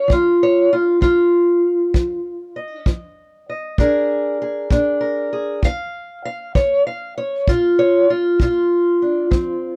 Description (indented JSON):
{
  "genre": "acoustic country blues, solo or duo",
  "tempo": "65 BPM (dotted quarters)",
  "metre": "12/8",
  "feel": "straight",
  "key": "Bb mixolydian",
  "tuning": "A4 = 438 Hz",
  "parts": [
    { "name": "fingerpicked steel-string acoustic guitar", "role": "melody", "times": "0.0-9.8 s", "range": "Bb2 to F5", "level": "-18 LUFS", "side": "equal", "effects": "none" },
    { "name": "kick drum", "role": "drums", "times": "0.1-9.5 s", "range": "none", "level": "-20 LUFS", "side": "equal", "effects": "none" }
  ],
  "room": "light reverb",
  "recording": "dry, close 1970s-style studio recording",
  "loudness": "-17 LUFS",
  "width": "mono",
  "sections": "0.0-9.8 A section",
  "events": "none",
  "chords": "0.0 F5; 3.8 Bb7; 5.6 N.C.; 7.5 Bb5",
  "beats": "| 0.10 1.02 1.94 2.86 | 3.78 4.71 5.63 6.55 | 7.47 8.40 9.32"
}